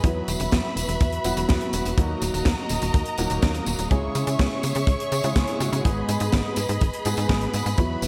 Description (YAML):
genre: italo disco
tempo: 124 BPM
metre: 4/4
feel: straight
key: G# minor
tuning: A4 = 441 Hz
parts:
  - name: warm studio string section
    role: sustained chords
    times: 0.0-8.1 s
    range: F#4 to C#6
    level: -32 LUFS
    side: equal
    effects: none
  - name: dark baby grand piano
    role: stabs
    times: 0.0-8.1 s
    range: G#2 to G#4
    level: -32 LUFS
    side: equal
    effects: analog chorus, delay
  - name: tight sequencer bass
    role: bass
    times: 0.0-8.1 s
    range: D#1 to C#3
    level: -29 LUFS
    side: equal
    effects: delay
  - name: kick drum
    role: drums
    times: 0.0-7.9 s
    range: none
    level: -25 LUFS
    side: equal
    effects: small room reverb
  - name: tight funk drum kit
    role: drums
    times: 0.0-8.1 s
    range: hi-hat, snare drum, tambourine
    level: -31 LUFS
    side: equal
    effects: small room reverb, gated reverb
room: moderate lush hall reverb, RT60 1.9 s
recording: bright 1980s-style digital production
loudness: -24 LUFS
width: mono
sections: 0.0-8.1 A section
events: none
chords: 0.0 Esus2; 2.0 D#m; 3.9 C#m; 5.8 G#m